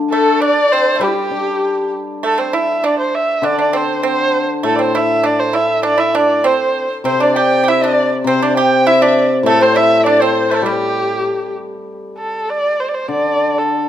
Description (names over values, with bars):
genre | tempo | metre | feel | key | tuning
chinese traditional, Chinese chamber ensemble | 99 BPM | 2/4 | rubato | G zhi mode | A4 = 442 Hz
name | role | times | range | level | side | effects
hammered dulcimer | accompaniment | 0.0-13.9 s | A2 to D4 | -19 LUFS | left 2 dB | none
dark erhu | melody | 0.1-13.9 s | G4 to G5 | -16 LUFS | right 1 dB | none
pipa | second line | 0.1-11.5 s | G3 to G4 | -20 LUFS | right 5 dB | none
reedy large dizi | second line | 0.1-1.9, 7.1-11.6 s | E4 to G5 | -19 LUFS | left 6 dB | none
room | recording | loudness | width
moderate recital hall reverb, RT60 1.6 s | minimal, uncompressed stereo recording | -12 LUFS | side -10 dB against mid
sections
0.0-2.2 A section; 2.2-11.9 B section; 11.9-13.9 A section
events
none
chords
none